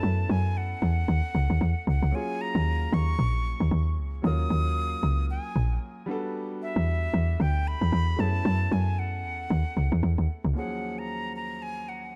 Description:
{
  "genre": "amapiano",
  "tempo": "114 BPM",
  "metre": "4/4",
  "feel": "swing 58% on 16ths",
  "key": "unclear",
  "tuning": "A4 = 440 Hz",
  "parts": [
    { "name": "breathy bright concert flute", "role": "melody", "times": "0.0-12.2 s", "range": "E5 to Eb6", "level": "-36 LUFS", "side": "equal", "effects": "tape echo" },
    { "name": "warm concert grand piano", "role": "accompaniment", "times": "0.0-12.2 s", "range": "Eb2 to Bb4", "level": "-39 LUFS", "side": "equal", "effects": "none" },
    { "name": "woody log drum bass", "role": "bass", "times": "0.0-10.5 s", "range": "Bb1 to Gb2", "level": "-27 LUFS", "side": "equal", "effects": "none" }
  ],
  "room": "small room ambience",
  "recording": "dark, warm production",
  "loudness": "-27 LUFS",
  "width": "mono",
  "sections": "0.0-10.6 A section; 10.6-12.2 B section",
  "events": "drop 0.0-10.6",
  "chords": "0.0 Gbm7; 2.1 Ebm11; 6.1 Em11; 8.2 Gbm7; 10.6 Ebm11"
}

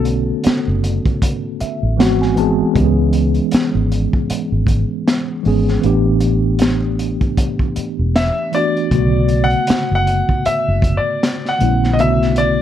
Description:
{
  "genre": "R&B, neo-soul",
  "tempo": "78 BPM",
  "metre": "4/4",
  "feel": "swing 56% on 16ths",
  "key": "B minor",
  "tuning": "A4 = 441 Hz",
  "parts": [
    { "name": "clear concert grand piano", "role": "melody", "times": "0.0, 8.2-12.6 s", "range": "D5 to F#5", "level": "-18 LUFS", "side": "left 1 dB", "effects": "slapback echo" },
    { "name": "mellow tine electric piano", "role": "accompaniment", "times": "0.0-12.6 s", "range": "C#3 to A5", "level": "-18 LUFS", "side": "equal", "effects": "medium stereo tremolo" },
    { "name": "vintage muted fingered electric bass", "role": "bass", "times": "0.0-12.6 s", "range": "E1 to C#2", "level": "-17 LUFS", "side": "equal", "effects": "none" },
    { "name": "crunchy breakbeat drum kit", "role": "drums", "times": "0.1-12.6 s", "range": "hi-hat, kick drum, snare drum", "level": "-19 LUFS", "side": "equal", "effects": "none" }
  ],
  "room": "light reverb",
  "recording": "dark, warm production",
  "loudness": "-14 LUFS",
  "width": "side -10 dB against mid",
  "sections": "0.0-12.6 A section",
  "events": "tine electric piano fill 1.2-2.8",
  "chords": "0.0 Bm9; 2.0 G#7alt; 2.8 C#m7; 5.8 A9sus4; 8.9 Bm9"
}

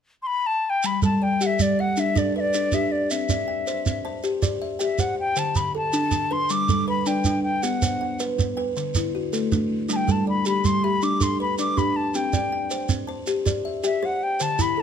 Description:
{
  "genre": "southern african traditional, mbira-style interlocking cycle",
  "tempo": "106 BPM (dotted quarters)",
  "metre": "12/8",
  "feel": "straight",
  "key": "G major",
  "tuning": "A4 = 441 Hz",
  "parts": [
    { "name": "wooden flute", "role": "melody", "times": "0.2-14.8 s", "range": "D5 to D6", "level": "-24 LUFS", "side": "left 2 dB", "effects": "none" },
    { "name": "buzzing kalimba", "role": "arpeggios", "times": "0.8-14.8 s", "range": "D3 to E5", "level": "-26 LUFS", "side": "left 4 dB", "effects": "none" },
    { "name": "shekere", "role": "percussion", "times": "0.8-14.8 s", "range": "none", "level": "-27 LUFS", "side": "right 4 dB", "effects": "none" },
    { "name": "kalimba", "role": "arpeggios", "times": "1.0-14.8 s", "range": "B2 to A5", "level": "-28 LUFS", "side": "right 5 dB", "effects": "none" }
  ],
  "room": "moderate recital hall reverb, RT60 1.4 s",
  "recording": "close, detailed microphones",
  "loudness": "-21 LUFS",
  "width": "side -8 dB against mid",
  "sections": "0.8-14.8 A section",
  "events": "none",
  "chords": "0.0 N.C.; 0.8 G; 3.1 C; 5.4 D5; 6.5 G; 7.6 B5; 8.8 D; 9.9 G; 12.2 C"
}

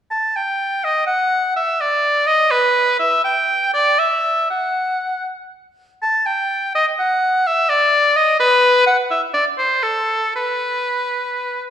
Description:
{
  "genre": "classical, baroque-style fantasia for unaccompanied oboe",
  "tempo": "75-88 BPM (dotted quarters)",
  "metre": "6/8",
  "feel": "rubato",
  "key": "E minor",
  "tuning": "A4 = 441 Hz",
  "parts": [
    { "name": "bright oboe", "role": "solo", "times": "0.1-11.6 s", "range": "A4 to A5", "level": "-15 LUFS", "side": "equal", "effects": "none" }
  ],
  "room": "wet recital hall reverb, RT60 1.4 s",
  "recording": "heard from further back in the room",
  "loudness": "-15 LUFS",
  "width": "side -9 dB against mid",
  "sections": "0.1-11.7 A section",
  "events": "none",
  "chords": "none"
}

